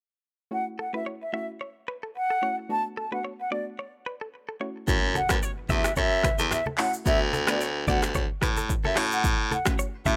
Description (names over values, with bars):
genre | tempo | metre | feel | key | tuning
afrobeats | 110 BPM | 4/4 | swing 55% on 16ths | F# minor | A4 = 440 Hz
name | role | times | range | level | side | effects
mellow silver concert flute | melody | 0.5-10.2 s | D5 to A5 | -31 LUFS | equal | none
soft round pluck | accompaniment | 0.5-10.2 s | A3 to F#4 | -38 LUFS | equal | chorus
direct-recorded clean electric guitar | riff | 0.8-10.1 s | A4 to E5 | -37 LUFS | equal | digital delay
edgy baritone saxophone | bass | 4.9-10.2 s | D2 to A2 | -29 LUFS | equal | none
afro-pop drum kit | drums | 4.9-10.2 s | finger snaps, handclaps, hi-hat, kick drum, rim click, shaker | -29 LUFS | equal | none
congas | percussion | 4.9-10.2 s | none | -39 LUFS | equal | none
impact | sound effects | 5.0-7.1 s | none | -44 LUFS | equal | none
room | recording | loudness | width
little or no reverb | rough home demo mix | -27 LUFS | mono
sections
0.5-4.9 A section; 4.9-10.2 B section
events
impact 4.9-7.1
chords
0.5 F#m7; 2.7 D6; 4.6 F#m7; 7.1 D6; 9.0 A6